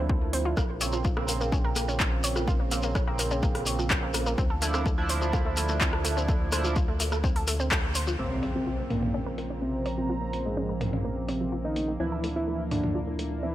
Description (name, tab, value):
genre	melodic techno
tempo	126 BPM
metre	4/4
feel	straight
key	unclear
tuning	A4 = 441 Hz
part	analog pluck	arpeggios	0.0-13.5 s	F3 to Db5	-34 LUFS	equal	chorus, sidechain pumping, digital delay
part	sync-sweep polysynth	stabs	0.0-13.5 s	Db3 to E4	-34 LUFS	right 3 dB	chorus, cassette tape, sidechain pumping, digital delay
part	round analog bass	bass	0.0-13.5 s	Bb1 to D2	-32 LUFS	equal	sidechain pumping
part	analog drone	drone	0.0-13.5 s	Bb2 to Bb3	-42 LUFS	equal	chorus, sidechain pumping
part	electronic kick drum	drums	0.1-7.8 s	none	-27 LUFS	equal	overdrive
part	deep house drum kit	drums	0.3-13.3 s	handclaps, hi-hat, rim click, toms	-32 LUFS	equal	overdrive, low-pass filter on hats, low-pass filter on snare, low-pass filter on toms, low-pass filter on room
part	shekere	percussion	0.6-8.2 s	none	-34 LUFS	left 2 dB	none
part	fat analog lead	melody	8.2-13.5 s	Ab3 to E4	-31 LUFS	equal	digital delay
part	sweeping resonant pad	sustained chords	8.2-13.5 s	F3 to Bb5	-37 LUFS	right 4 dB	chorus, sidechain pumping
part	impact	sound effects	8.2-10.1 s	none	-38 LUFS	equal	none
room	light reverb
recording	none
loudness	-25 LUFS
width	side -13 dB against mid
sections	0.0-8.2 A section; 8.2-13.5 B section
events	filter sweep on analog polysynth 0.0-8.2, 8.2-13.5; band accent 7.7; impact 8.2-10.1; filter sweep on synth arpeggio sound 8.2-13.5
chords	0.0 Dmadd9; 0.6 Bbmadd9; 4.4 Dmadd9; 8.2 Bbmadd9; 12.0 Dmadd9